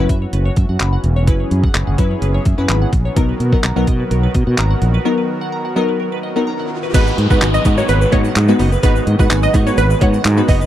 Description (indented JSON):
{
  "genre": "dance-pop",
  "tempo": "127 BPM",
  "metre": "4/4",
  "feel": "straight",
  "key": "G# minor",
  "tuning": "A4 = 440 Hz",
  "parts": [
    { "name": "wavetable chord stab", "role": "accompaniment", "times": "0.0-10.6 s", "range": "F#3 to B4", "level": "-19 LUFS", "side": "left 2 dB", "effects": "sidechain pumping" },
    { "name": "soft supersaw", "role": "sustained chords", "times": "0.0-10.7 s", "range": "D#3 to A#4", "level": "-25 LUFS", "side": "equal", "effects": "sidechain pumping" },
    { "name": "glassy wavetable pluck", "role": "arpeggios", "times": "0.0-10.7 s", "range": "G#4 to B5", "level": "-28 LUFS", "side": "right 1 dB", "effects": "chorus, sidechain pumping, slapback echo" },
    { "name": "fretless electric bass", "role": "bass", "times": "0.0-10.6 s", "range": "E1 to B2", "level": "-16 LUFS", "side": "equal", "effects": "sidechain pumping" },
    { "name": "detuned 8-bit digital drum machine", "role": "drums", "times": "0.1-10.6 s", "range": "crash cymbal, handclaps, hi-hat, kick drum", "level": "-16 LUFS", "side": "equal", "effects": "none" },
    { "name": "riser and downlifter", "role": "sound effects", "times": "6.1-10.7 s", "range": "none", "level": "-27 LUFS", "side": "equal", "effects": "none" },
    { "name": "glassy wavetable pluck", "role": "melody", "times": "6.9-10.6 s", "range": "B4 to D#5", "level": "-19 LUFS", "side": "right 1 dB", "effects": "chorus, sidechain pumping, slapback echo" },
    { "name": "direct-recorded clean electric guitar", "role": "riff", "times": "6.9-10.7 s", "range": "B3 to F#4", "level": "-23 LUFS", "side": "right 5 dB", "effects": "ensemble chorus" },
    { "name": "egg shaker", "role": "percussion", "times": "6.9-10.7 s", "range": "none", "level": "-37 LUFS", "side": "left 18 dB", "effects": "none" }
  ],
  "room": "little or no reverb",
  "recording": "dry, close 1970s-style studio recording",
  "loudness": "-13 LUFS",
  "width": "side -12 dB against mid",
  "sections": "0.0-6.9 A section; 6.9-10.7 B section",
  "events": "break 5.1-6.9; riser 6.1-6.9; drop 6.9-10.7",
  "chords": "0.0 F#7sus4; 3.2 Bmaj7; 6.9 G#m7"
}